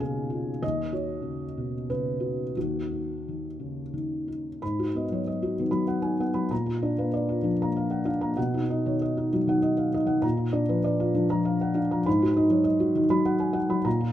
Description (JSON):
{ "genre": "neoclassical minimalist piano", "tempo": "85-102 BPM", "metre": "3/4", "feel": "rubato", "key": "unclear", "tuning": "A4 = 443 Hz", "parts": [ { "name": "felt-muted upright piano", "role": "solo", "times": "0.0-14.1 s", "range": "Eb2 to Cb6", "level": "-24 LUFS", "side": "equal", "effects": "none" } ], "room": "moderate plate reverb, RT60 2.8 s", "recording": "minimal, uncompressed stereo recording", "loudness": "-24 LUFS", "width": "side -12 dB against mid", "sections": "0.0-4.6 A section; 4.6-14.1 B section", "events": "none", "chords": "0.0 Db/Eb; 0.6 Bsus2/Eb; 2.6 Ebm7; 4.6 Abm7; 6.5 Bb; 8.4 B; 10.2 Bb; 12.1 Abm7", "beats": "0.00 | 0.62 1.25 1.89 | 2.56 3.25 3.93 | 4.61 5.26 5.89 | 6.51 7.13 7.74 | 8.37 9.01 9.64 | 10.24 10.85 11.46 | 12.06 12.66 13.26 | 13.85" }